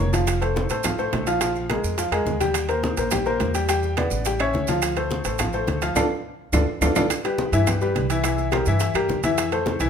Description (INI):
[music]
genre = latin, salsa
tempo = 211 BPM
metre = 4/4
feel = straight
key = unclear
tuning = A4 = 440 Hz
[part]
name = clear upright piano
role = accompaniment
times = 0.0-9.9 s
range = E3 to G5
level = -23 LUFS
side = left 2 dB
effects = none
[part]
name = upright bass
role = bass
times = 0.0-9.9 s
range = F1 to G2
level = -26 LUFS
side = equal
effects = none
[part]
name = bongos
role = percussion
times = 0.1-9.9 s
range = none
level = -34 LUFS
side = left 5 dB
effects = none
[part]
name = congas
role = percussion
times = 0.1-9.9 s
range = none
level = -30 LUFS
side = right 1 dB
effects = none
[part]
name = maracas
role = percussion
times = 0.1-9.9 s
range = none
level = -34 LUFS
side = right 8 dB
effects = none
[part]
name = timbales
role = percussion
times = 0.1-9.9 s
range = none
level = -32 LUFS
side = right 8 dB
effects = none
[part]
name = claves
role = percussion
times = 0.3-9.5 s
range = none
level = -33 LUFS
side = right 6 dB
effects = none
[sound]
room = moderate large studio reverb, RT60 1.2 s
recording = minimal, uncompressed stereo recording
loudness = -20 LUFS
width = side -7 dB against mid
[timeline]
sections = 0.0-7.1 A section; 7.1-9.9 B section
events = band accent 6.0-7.1; drum fill 6.2-7.1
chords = 0.3 F; 1.4 Bb5; 2.5 Eb6; 3.7 Em7; 4.3 A7; 4.8 Dm7; 7.1 Cmaj7; 8.2 C7; 9.4 Fmaj7